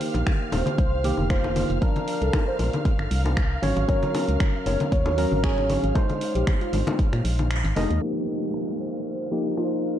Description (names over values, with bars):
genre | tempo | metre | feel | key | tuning
deep house | 116 BPM | 4/4 | swing 54% on 16ths | F minor | A4 = 440 Hz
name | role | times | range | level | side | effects
percussive organ stab | stabs | 0.0-10.0 s | Eb3 to Eb5 | -28 LUFS | equal | chorus, sidechain pumping, tape echo
punchy analog drum machine | drums | 0.0-9.9 s | finger snaps, hi-hat | -35 LUFS | right 1 dB | overdrive, low-pass filter on hats, vintage 12-bit sampler grit, low-pass filter on snare, low-pass filter on room
dark symphonic violin section | texture | 0.0-10.0 s | F5 to F6 | -38 LUFS | right 1 dB | none
organ-like FM bass | bass | 0.1-8.0 s | Eb1 to Bb2 | -25 LUFS | equal | sidechain pumping
congas | percussion | 0.1-7.9 s | none | -30 LUFS | left 3 dB | sidechain pumping on perc
electronic kick drum | drums | 0.3-7.1 s | none | -23 LUFS | equal | vintage 12-bit sampler grit
warm velvety synth lead | melody | 0.5-9.9 s | F4 to Db5 | -31 LUFS | equal | chorus, diffuse ambient delay
downlifter | sound effects | 8.1-10.0 s | none | -34 LUFS | equal | none
room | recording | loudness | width
moderate plate reverb, RT60 1.5 s, digital ambience | dreamy mix soaked in reverb, cassette tape, low-pass filter | -21 LUFS | side -11 dB against mid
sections
0.0-8.0 A section; 8.0-10.0 B section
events
kick drops out 7.5-8.0; band accent 7.5; filter sweep on drum 8.0-10.0; filter sweep on synth stab 8.0-10.0; filter sweep 8.0-10.0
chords
0.0 F9sus4; 1.8 C9sus4; 3.6 Ab9sus4; 6.0 Bb9sus4; 8.0 F9sus4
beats
0.27 0.78 1.30 | 1.82 2.33 2.85 3.37 | 3.89 4.40 4.92 5.44 | 5.96 6.47 6.99 7.51 | 8.02 8.54 9.06 9.58